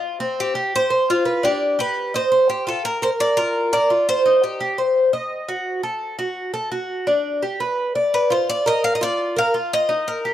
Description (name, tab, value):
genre	latin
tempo	170 BPM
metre	4/4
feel	straight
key	unclear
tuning	A4 = 437 Hz
part	Cuban tres	arpeggios	0.0-10.3 s	C4 to Eb5	-21 LUFS	left 1 dB	none
part	Cuban tres	melody	0.4-4.8, 8.1-10.3 s	F4 to F5	-19 LUFS	right 1 dB	none
room	light reverb, studio reverb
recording	dry, close 1970s-style studio recording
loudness	-18 LUFS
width	side -12 dB against mid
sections	0.0-2.8 A section; 2.8-10.3 B section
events	none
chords	0.0 Fsus2; 1.4 G; 2.1 F5; 2.8 Bb; 4.3 Cm; 5.7 F#m; 7.1 G; 8.5 Bb